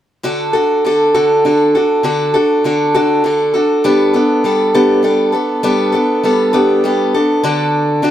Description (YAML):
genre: rock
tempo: 67 BPM (dotted quarters)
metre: 6/8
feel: straight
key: D major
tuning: A4 = 442 Hz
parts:
  - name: picked acoustic archtop guitar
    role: solo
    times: 0.2-8.1 s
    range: D3 to A4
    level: -11 LUFS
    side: equal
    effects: none
room: light reverb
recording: none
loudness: -11 LUFS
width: side -11 dB against mid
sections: 0.2-7.4 A section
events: none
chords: 0.2 D; 3.8 Gadd9; 7.4 D